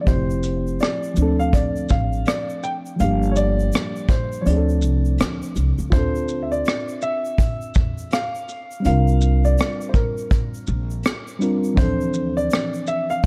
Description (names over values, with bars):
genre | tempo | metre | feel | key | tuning
lo-fi hip hop | 82 BPM | 4/4 | swing 61% on 16ths | D minor | A4 = 440 Hz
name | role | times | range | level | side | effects
warm upright piano | melody | 0.0-13.3 s | Bb4 to G5 | -28 LUFS | equal | none
reed electric piano | accompaniment | 0.0-13.3 s | E3 to Bb4 | -27 LUFS | equal | none
upright bass | bass | 0.1-12.5 s | F1 to E2 | -23 LUFS | equal | none
vintage brush drum kit | drums | 0.1-13.3 s | hi-hat, kick drum, rim click, shaker | -23 LUFS | equal | vintage 12-bit sampler grit
tube shaker | percussion | 0.1-13.3 s | none | -47 LUFS | equal | none
room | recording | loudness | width
small room ambience | dark, warm production | -21 LUFS | mono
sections
0.0-5.9 A section; 5.9-13.3 B section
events
kick muted 4.5-5.9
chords
0.1 Fmaj9; 1.2 Dm7; 3.0 Gm7; 4.5 Dm7; 5.9 Dm9; 8.8 C9sus4; 11.8 Dm9